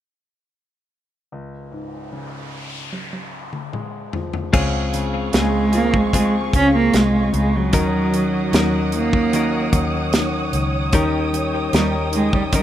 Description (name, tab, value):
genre	pop ballad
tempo	75 BPM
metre	4/4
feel	straight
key	Db major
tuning	A4 = 440 Hz
part	clear concert grand piano	accompaniment	1.3-12.6 s	Db2 to Db4	-30 LUFS	left 2 dB	none
part	noise sweep	sound effects	1.6-4.5 s	none	-36 LUFS	left 1 dB	none
part	modern studio drum kit	drums	2.9-12.6 s	crash cymbal, hi-hat, kick drum, snare drum, toms	-21 LUFS	equal	none
part	dark studio string section	sustained chords	4.5-12.6 s	Ab4 to Eb6	-27 LUFS	right 2 dB	none
part	direct-recorded clean electric guitar	arpeggios	4.5-12.6 s	Db3 to Bb4	-23 LUFS	left 4 dB	ping-pong delay
part	vintage muted fingered electric bass	bass	4.5-12.6 s	C2 to Eb2	-24 LUFS	equal	none
part	dark cello	melody	5.4-12.6 s	Gb3 to Db4	-19 LUFS	right 3 dB	none
room	studio ambience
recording	rough home demo mix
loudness	-16 LUFS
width	side -11 dB against mid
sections	1.3-4.5 A section; 4.5-12.6 B section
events	noise sweep 1.6-4.5; drum fill 2.9-4.5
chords	1.3 Db; 4.5 Dbmaj7; 7.7 Ebm7; 10.9 Eb7